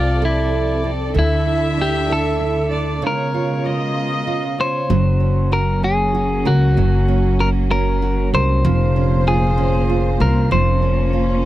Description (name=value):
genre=six-eight pop ballad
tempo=64 BPM (dotted quarters)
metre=6/8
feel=straight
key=unclear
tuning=A4 = 440 Hz
part: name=clean electric guitar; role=melody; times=0.0-11.5 s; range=E4 to C5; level=-22 LUFS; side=left 1 dB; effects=none
part: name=rich chamber violin section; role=second line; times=0.0-4.9 s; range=C#5 to E5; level=-26 LUFS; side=left 2 dB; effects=none
part: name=nylon-string guitar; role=accompaniment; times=0.0-11.5 s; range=C3 to C5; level=-23 LUFS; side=right 9 dB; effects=none
part: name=warm studio string section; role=sustained chords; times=0.0-11.5 s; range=Bb2 to C5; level=-25 LUFS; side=left 1 dB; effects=none
part: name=upright bass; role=bass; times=0.0-11.5 s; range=F1 to D2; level=-18 LUFS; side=left 1 dB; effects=none
room=little or no reverb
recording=dry, close 1970s-style studio recording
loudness=-15 LUFS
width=side -14 dB against mid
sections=0.0-4.9 A section; 4.9-11.5 B section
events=break 3.0-4.9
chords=0.0 F/C; 1.2 Dsus2; 3.0 C#7; 4.9 Gb; 8.6 Bbmadd9/F